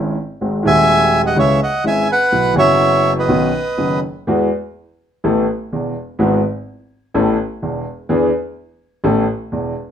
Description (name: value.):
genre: tango.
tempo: 126 BPM.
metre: 4/4.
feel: rubato.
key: E major.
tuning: A4 = 442 Hz.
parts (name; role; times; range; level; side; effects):
warm concert grand piano; accompaniment; 0.0-9.7 s; D#1 to A4; -16 LUFS; equal; none.
bandoneon; melody; 0.7-4.0 s; B4 to G#5; -14 LUFS; right 1 dB; none.
room: moderate studio reverb, RT60 0.8 s.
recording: minimal, uncompressed stereo recording.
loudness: -14 LUFS.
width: side -9 dB against mid.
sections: 0.0-4.3 A section; 4.3-9.9 A section.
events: none.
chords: 0.4 G#7; 1.4 C#m; 2.3 Bsus4; 3.3 Badd9; 4.3 Eadd9; 5.2 Asus2; 6.2 Eadd9/G#; 7.1 Aadd9; 8.1 E7; 9.0 Aadd9.